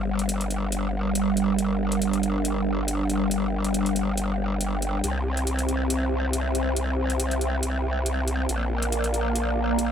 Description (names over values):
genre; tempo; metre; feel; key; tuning
heavy wobble dubstep; 139 BPM; 4/4; swing 54% on 16ths, half-time; G dorian; A4 = 440 Hz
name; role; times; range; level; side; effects
lush unison pad; sustained chords; 0.0-9.9 s; G3 to G5; -26 LUFS; right 1 dB; chorus, phaser
growl bass; bass; 0.0-9.9 s; G1 to C2; -26 LUFS; equal; chorus, overdrive
electronic hi-hat; drums; 0.2-9.9 s; none; -32 LUFS; equal; none
room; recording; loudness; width
moderate digital room reverb, RT60 1.0 s, digital ambience; none; -23 LUFS; side -8 dB against mid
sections
0.0-9.9 A section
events
filter sweep on analog synth pad 0.0-9.9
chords
0.0 Gm; 5.0 C; 8.5 Bb